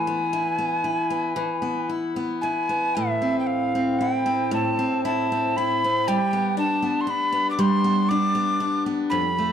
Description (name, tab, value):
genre	celtic folk, Celtic slow air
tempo	58 BPM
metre	3/4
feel	rubato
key	unclear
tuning	A4 = 442 Hz
part	breathy mellow mid whistle	melody	0.0-9.5 s	E5 to D6	-24 LUFS	equal	none
part	picked steel-string acoustic guitar	accompaniment	0.0-9.5 s	F2 to E4	-23 LUFS	left 1 dB	none
room	moderate recital hall reverb, RT60 1.6 s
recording	dark, warm production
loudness	-21 LUFS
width	side -8 dB against mid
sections	0.0-9.5 A section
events	none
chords	0.0 E; 3.0 Am; 6.1 G